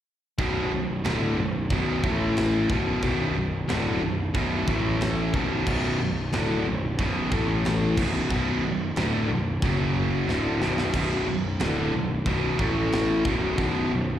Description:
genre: heavy metal.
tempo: 91 BPM.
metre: 4/4.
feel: straight.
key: B minor.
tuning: A4 = 442 Hz.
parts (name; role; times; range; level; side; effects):
distorted electric guitar; riff; 0.4-14.2 s; B1 to A3; -27 LUFS; left 5 dB; distortion, slapback echo.
heavy high-gain guitar; riff; 0.4-14.2 s; B1 to A3; -29 LUFS; right 9 dB; distortion, slapback echo.
fuzz picked electric bass; bass; 0.4-14.2 s; B0 to A1; -27 LUFS; equal; overdrive.
tight metal drum kit; drums; 0.4-13.7 s; china cymbal, crash cymbal, kick drum, snare drum; -32 LUFS; right 1 dB; none.
room: little or no reverb.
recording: live gig heard through the venue's PA, recital hall reverb.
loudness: -23 LUFS.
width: side -11 dB against mid.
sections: 0.4-14.2 A section.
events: drum fill 10.3-10.9.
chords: 0.4 Bm; 2.0 A5; 2.7 Bm; 4.7 A5; 5.3 Bm; 7.3 A5; 8.0 Bm; 9.6 F#5; 10.3 Bm; 12.6 A5; 13.3 B5.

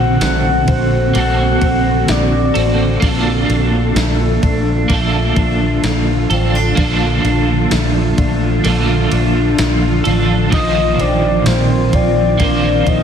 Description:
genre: dream pop.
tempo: 64 BPM.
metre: 4/4.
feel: straight.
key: Bb major.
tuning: A4 = 442 Hz.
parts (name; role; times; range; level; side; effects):
soft octave-layered synth lead; melody; 0.0-2.8, 10.5-13.0 s; C5 to F#5; -18 LUFS; left 2 dB; chorus, phaser, digital delay.
electric guitar at the edge of break-up; accompaniment; 0.0-13.0 s; Bb2 to C5; -19 LUFS; right 2 dB; tremolo, ensemble chorus.
granular cloud pad; sustained chords; 0.0-13.0 s; D3 to A4; -19 LUFS; right 1 dB; built-in reverb.
fingerpicked twelve-string acoustic guitar; arpeggios; 0.0-13.0 s; A3 to C5; -22 LUFS; left 3 dB; lush chorus, digital delay.
vintage muted fingered electric bass; bass; 0.0-13.0 s; A1 to Bb1; -17 LUFS; equal; none.
gated 80s digital drum machine; drums; 0.2-13.0 s; kick drum, ride cymbal, snare drum, tambourine; -22 LUFS; equal; gated reverb, gated reverb snare.
room: light reverb.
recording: dense, heavily limited modern master.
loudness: -12 LUFS.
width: side -8 dB against mid.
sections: 0.0-13.0 A section.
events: none.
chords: 0.0 D7/Bb; 3.0 Bbmaj7; 10.5 F7sus4/Bb.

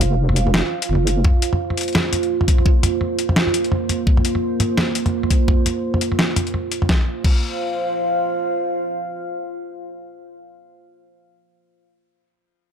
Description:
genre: half-time drum and bass.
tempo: 170 BPM.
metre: 4/4.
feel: swing 59% on 16ths, half-time.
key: unclear.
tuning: A4 = 440 Hz.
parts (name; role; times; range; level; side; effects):
deep dark ambient pad; sustained chords; 0.0-10.5 s; Bb3 to F5; -22 LUFS; right 3 dB; chorus, built-in reverb, sidechain pumping.
deep soft wobble bass; bass; 0.0-1.2 s; F1 to Gb1; -18 LUFS; equal; chorus.
boom bap sampler-style drum kit; drums; 0.0-7.4 s; crash cymbal, hi-hat, snare drum, toms; -21 LUFS; equal; small room reverb.
electronic kick drum; drums; 1.2-7.4 s; none; -16 LUFS; equal; small room reverb.
room: light reverb, digital ambience.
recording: none.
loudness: -17 LUFS.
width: side -8 dB against mid.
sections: 0.0-6.9 A section; 6.9-9.7 B section.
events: none.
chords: 0.0 F5; 1.2 Bb5; 6.9 F5.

